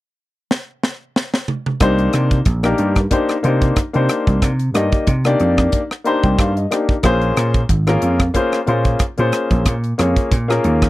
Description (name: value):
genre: electric jazz fusion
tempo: 92 BPM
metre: 4/4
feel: swing 55% on 16ths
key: unclear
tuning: A4 = 440 Hz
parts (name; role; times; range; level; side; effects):
- crisp fusion drum kit; drums; 0.5-10.9 s; hi-hat, kick drum, rim click, snare drum, toms; -18 LUFS; right 1 dB; none
- warm grand piano; accompaniment; 1.8-10.9 s; Bb3 to Bb5; -18 LUFS; left 2 dB; none
- vintage slap bass; bass; 1.8-10.9 s; Ab1 to C3; -17 LUFS; right 1 dB; none
room: little or no reverb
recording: dry, close 1970s-style studio recording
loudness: -15 LUFS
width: side -17 dB against mid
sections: 0.0-1.8 A section; 1.8-10.9 B section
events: drum fill 0.5-1.8; grand piano fill 5.7-7.0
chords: 0.0 N.C.; 1.8 Cm9; 7.0 Bbm9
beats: 0.51 1.16 | 1.81 2.47 3.12 3.77 | 4.43 5.08 5.74 6.39 | 7.04 7.70 8.35 9.01 | 9.66 10.32